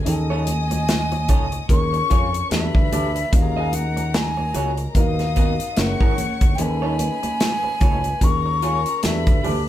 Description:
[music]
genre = lush 1970s-style soul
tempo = 74 BPM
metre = 4/4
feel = swing 58% on 16ths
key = Eb minor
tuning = A4 = 443 Hz
[part]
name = warm studio string section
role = second line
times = 0.0-9.7 s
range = Bb4 to D#6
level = -32 LUFS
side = left 2 dB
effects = none
[part]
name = warm baby grand piano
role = accompaniment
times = 0.0-9.7 s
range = B3 to Bb4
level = -30 LUFS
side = left 2 dB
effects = tube saturation
[part]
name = fingered electric bass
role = bass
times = 0.0-9.7 s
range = Gb1 to F2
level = -24 LUFS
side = equal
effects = none
[part]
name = breathy jazz flute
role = melody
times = 0.1-9.6 s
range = E5 to Db6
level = -25 LUFS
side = left 2 dB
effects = none
[part]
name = electric guitar through a small old amp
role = riff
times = 0.1-9.6 s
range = B3 to Eb5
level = -29 LUFS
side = right 2 dB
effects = none
[part]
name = modern studio drum kit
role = drums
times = 0.1-9.7 s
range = hi-hat, kick drum, snare drum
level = -20 LUFS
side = equal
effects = none
[part]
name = congas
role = percussion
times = 0.1-9.7 s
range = none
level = -31 LUFS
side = right 2 dB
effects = none
[sound]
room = moderate studio reverb, RT60 0.6 s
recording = band playing live in one room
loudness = -18 LUFS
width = side -12 dB against mid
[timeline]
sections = 0.0-9.7 A section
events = none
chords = 0.1 Amaj7#11; 1.7 Bbm7/Eb; 2.5 Em11; 3.3 Ebm7; 5.0 Bmaj7#11/D#; 5.8 Gb9; 6.6 B13; 8.2 Bbm7/Eb; 9.0 Em11

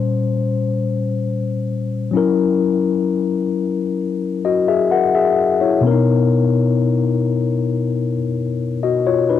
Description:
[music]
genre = R&B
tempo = 65 BPM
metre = 4/4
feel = straight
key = unclear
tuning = A4 = 440 Hz
[part]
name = mellow tine electric piano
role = solo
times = 0.0-9.4 s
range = Bb2 to Gb5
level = -16 LUFS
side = left 4 dB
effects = medium stereo tremolo, cassette tape
[sound]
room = light reverb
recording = home recording on cassette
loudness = -16 LUFS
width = side -10 dB against mid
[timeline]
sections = 0.0-9.4 A section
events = none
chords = 0.0 Bbm69; 2.1 Gb7; 5.8 Bmaj7

